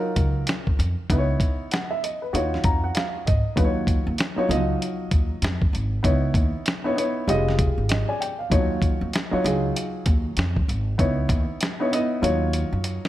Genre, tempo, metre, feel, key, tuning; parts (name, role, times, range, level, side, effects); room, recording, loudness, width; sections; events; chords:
hip hop, jazz-hop; 97 BPM; 4/4; swing 61% on 16ths; A4 = 440 Hz
dark upright piano; accompaniment; 0.0-13.1 s; F3 to Bb5; -25 LUFS; equal
upright bass; bass; 0.2-13.0 s; F1 to Ab2; -25 LUFS; equal
dusty soul sampler-style drum kit; drums; 0.2-13.1 s; hi-hat, kick drum, snare drum; -24 LUFS; equal
light reverb; -21 LUFS; side -14 dB against mid
0.0-3.6 A section; 3.6-13.1 B section
upright piano fill 2.3-3.6, 7.6-8.5; drum fill 12.2-13.1
0.0 Ebm9; 1.1 Dbm9; 2.3 Ebm9; 6.0 Dbm9; 7.3 Fm9; 8.5 Ebm9; 11.0 Dbm9; 12.2 Ebm9